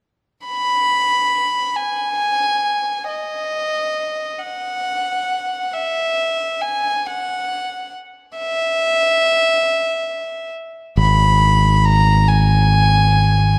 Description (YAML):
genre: post-rock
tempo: 46 BPM (dotted quarters)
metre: 6/8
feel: straight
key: unclear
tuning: A4 = 440 Hz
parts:
  - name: warm violin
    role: melody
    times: 0.5-13.6 s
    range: D#5 to B5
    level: -20 LUFS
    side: equal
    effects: analog delay
  - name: growling fingered electric bass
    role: bass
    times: 11.0-13.6 s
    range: G#1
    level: -16 LUFS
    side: equal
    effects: overdrive
room: light reverb, small room reverb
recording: dark, warm production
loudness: -18 LUFS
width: mono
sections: 0.5-11.0 A section; 11.0-13.6 A section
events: none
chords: 0.5 N.C.; 11.0 G#m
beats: | 0.48 1.79 | 3.10 4.42 | 5.73 7.04 | 8.36 9.67 | 10.98 12.29